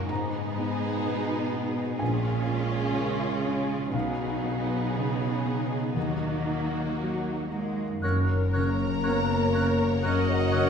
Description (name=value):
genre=cinematic, emotional film score for orchestra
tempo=57-63 BPM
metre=4/4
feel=rubato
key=Eb minor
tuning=A4 = 440 Hz
part: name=rich studio violin section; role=second line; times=0.0-10.7 s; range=Eb4 to C#5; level=-33 LUFS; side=equal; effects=none
part: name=clear studio viola section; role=accompaniment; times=0.0-10.7 s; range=F#3 to D#5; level=-33 LUFS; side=right 2 dB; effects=none
part: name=felt-muted upright piano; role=accompaniment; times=0.0-10.7 s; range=Bb1 to Bb5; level=-31 LUFS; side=left 2 dB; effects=none
part: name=concert harp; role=arpeggios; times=0.0-10.7 s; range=Gb2 to Ab4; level=-33 LUFS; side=left 2 dB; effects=none
part: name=clear studio cello section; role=bass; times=0.0-10.7 s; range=F#2 to Ab3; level=-32 LUFS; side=right 2 dB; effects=none
part: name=bright concert flute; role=second line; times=8.0-10.6 s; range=F#6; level=-36 LUFS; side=equal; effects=none
part: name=clear clarinet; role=second line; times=8.0-10.7 s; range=A#4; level=-35 LUFS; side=right 3 dB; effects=none
part: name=clear oboe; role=second line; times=8.0-10.7 s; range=C#5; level=-37 LUFS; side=right 2 dB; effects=none
part: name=clear symphonic double bass section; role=bass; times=8.0-10.7 s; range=F#1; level=-33 LUFS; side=right 1 dB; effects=none
part: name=rich studio violin section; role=melody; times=8.5-10.7 s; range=F#5 to A#5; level=-33 LUFS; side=left 2 dB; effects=none
part: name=dark French horn section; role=sustained chords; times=8.5-10.7 s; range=F#3 to A#3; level=-29 LUFS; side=left 2 dB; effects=none
room=wet scoring stage reverb, RT60 1.8 s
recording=heard from further back in the room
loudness=-25 LUFS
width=side -7 dB against mid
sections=0.0-8.0 A section; 8.0-10.7 B section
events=none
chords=0.1 Abm; 2.0 Bbm7; 3.9 B6; 6.0 Ebm; 8.0 F#